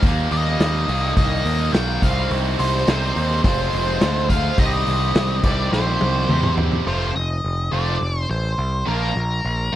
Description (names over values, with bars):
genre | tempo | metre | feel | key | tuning
classic rock | 105 BPM | 4/4 | straight | unclear | A4 = 440 Hz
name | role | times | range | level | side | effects
tight distorted guitar | riff | 0.0-9.8 s | F2 to G4 | -23 LUFS | right 1 dB | distortion
growling picked electric bass | bass | 0.0-9.8 s | F1 to E2 | -22 LUFS | equal | overdrive
vintage drum kit | drums | 0.0-6.9 s | crash cymbal, hi-hat, kick drum, snare drum, toms | -21 LUFS | equal | none
octave-fuzz lead guitar | melody | 0.3-9.8 s | Bb4 to G5 | -24 LUFS | equal | wah, distortion, slapback echo
room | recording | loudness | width
small room ambience | none | -18 LUFS | side -13 dB against mid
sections
0.0-6.9 A section; 6.9-9.8 B section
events
drum fill 5.7-6.9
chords
0.0 Eb; 2.0 Cm; 3.4 Fm; 4.6 Cm; 5.4 Cm7; 6.9 F; 8.9 Bb